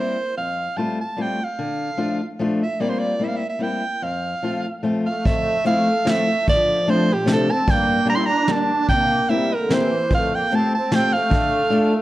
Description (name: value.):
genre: musette waltz.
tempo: 148 BPM.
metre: 3/4.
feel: straight.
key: F major.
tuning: A4 = 441 Hz.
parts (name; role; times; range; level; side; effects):
bright soprano saxophone; melody; 0.0-12.0 s; G4 to C6; -22 LUFS; right 2 dB; none.
fingerpicked old ladder-braced acoustic guitar; accompaniment; 0.0-11.9 s; F2 to A4; -22 LUFS; left 2 dB; none.
musette accordion; second line; 5.1-12.0 s; Bb2 to E4; -24 LUFS; right 2 dB; slapback echo.
soft brush drum kit; drums; 5.3-11.8 s; hi-hat, kick drum, snare drum; -22 LUFS; equal; none.
room: moderate recital hall reverb, RT60 1.5 s.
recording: worn, warbling old tape, cassette tape, warbly pitch drift.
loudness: -18 LUFS.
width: side -15 dB against mid.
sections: 0.0-5.3 A section; 5.3-12.0 A section.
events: none.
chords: 0.3 Fadd9; 1.6 Dm; 2.8 C7sus4; 3.2 C7; 4.0 F; 5.3 Fmaj7; 6.5 Dm7; 7.7 Gm; 8.9 C7; 10.1 Fadd9; 11.3 Dm.